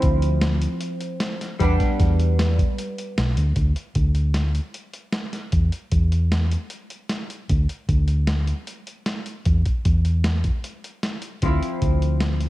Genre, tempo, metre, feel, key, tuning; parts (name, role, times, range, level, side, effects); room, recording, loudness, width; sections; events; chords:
progressive instrumental, band music in an uneven meter; 153 BPM; 5/4; straight; D dorian; A4 = 440 Hz
archtop guitar, miked and amplified; accompaniment; 0.0-3.5, 11.4-12.5 s; F3 to E4; -26 LUFS; equal; double-tracked left and right, cassette tape
hollow-body short-scale fingered electric bass; bass; 0.0-12.4 s; B1 to E2; -20 LUFS; equal
boom bap sampler-style drum kit; drums; 0.0-12.5 s; hi-hat, kick drum, snare drum; -24 LUFS; equal; cassette tape
little or no reverb; home recording on cassette; -20 LUFS; side -17 dB against mid
0.0-3.6 A section; 3.6-12.5 B section
kick and snare drop out 3.4
0.0 Dm7; 1.6 Em7; 3.6 N.C.; 11.4 Dm7